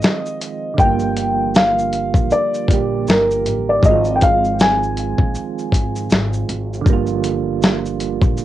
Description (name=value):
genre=lo-fi hip hop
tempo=79 BPM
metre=4/4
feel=swing 58% on 16ths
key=G phrygian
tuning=A4 = 440 Hz
part: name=felt-muted upright piano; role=melody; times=0.0-6.1 s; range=Bb4 to Ab5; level=-18 LUFS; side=left 1 dB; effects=low-pass filter, cassette tape, tape echo
part: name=soft electric-piano-like synth keys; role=accompaniment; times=0.0-8.4 s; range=D3 to G4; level=-22 LUFS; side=right 9 dB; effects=chorus, tremolo, cassette tape, low-pass filter
part: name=dusty soul sampler-style drum kit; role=drums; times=0.0-8.4 s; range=hi-hat, kick drum, shaker, snare drum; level=-16 LUFS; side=left 1 dB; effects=vintage 12-bit sampler grit, cassette tape
part: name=upright bass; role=bass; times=0.8-8.4 s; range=G1 to Bb1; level=-24 LUFS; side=left 1 dB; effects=none
room=light reverb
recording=home recording on cassette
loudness=-15 LUFS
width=side -13 dB against mid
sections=0.0-8.4 A section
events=none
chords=0.0 Ab6; 0.8 Gm7; 3.8 Ab6; 6.9 Gm7